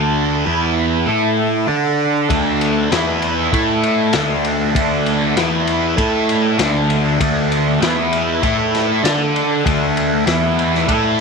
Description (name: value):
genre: psychedelic rock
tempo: 98 BPM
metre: 4/4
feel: straight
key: D major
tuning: A4 = 439 Hz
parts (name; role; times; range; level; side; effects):
- overdriven combo organ; sustained chords; 0.0-11.2 s; A3 to B5; -26 LUFS; right 10 dB; wide subtle chorus
- thick fuzz guitar; riff; 0.0-11.2 s; D3 to D5; -16 LUFS; equal; distortion, phaser
- fuzz picked electric bass; bass; 0.0-11.2 s; D2 to D3; -21 LUFS; equal; overdrive
- crunchy breakbeat drum kit; drums; 2.3-11.0 s; kick drum, ride cymbal, snare drum; -22 LUFS; left 4 dB; none
room: moderate spring reverb, RT60 2.6 s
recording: 1960s-style stereo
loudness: -14 LUFS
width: side -4 dB against mid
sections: 0.0-11.2 A section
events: none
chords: 0.5 E5; 1.1 A5; 1.7 D; 2.9 E5; 3.5 A5; 4.1 D; 5.4 E5; 6.0 A5; 6.6 D; 7.8 E5; 8.4 A5; 9.0 D; 10.3 E5